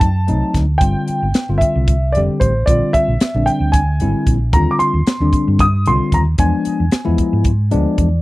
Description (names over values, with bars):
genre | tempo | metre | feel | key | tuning
electric jazz fusion | 226 BPM (eighths) | 7/8 | straight | unclear | A4 = 440 Hz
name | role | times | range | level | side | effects
dark grand piano | melody | 0.0-7.4 s | C5 to Eb6 | -19 LUFS | equal | none
tine electric piano | accompaniment | 0.0-8.2 s | D3 to D5 | -19 LUFS | left 2 dB | phaser
hollow-body short-scale fingered electric bass | bass | 0.0-8.2 s | F1 to G#2 | -16 LUFS | equal | none
crisp fusion drum kit | drums | 0.0-8.1 s | hi-hat, kick drum, snare drum | -17 LUFS | equal | none
room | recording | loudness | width
little or no reverb | dry, close 1970s-style studio recording | -13 LUFS | side -19 dB against mid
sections
0.0-8.2 A section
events
tine electric piano fill 7.5-8.2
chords
0.0 D7b9; 0.8 Gsus2; 2.7 Bb13; 4.5 Eb69; 6.4 E7b9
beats
0.02 0.28 0.55 | 0.82 1.08 1.35 1.62 1.88 2.15 2.41 | 2.68 2.94 3.21 3.48 3.74 4.01 4.27 | 4.54 4.80 5.07 5.33 5.60 5.87 6.13 | 6.40 6.66 6.93 7.19 7.46 7.72 7.99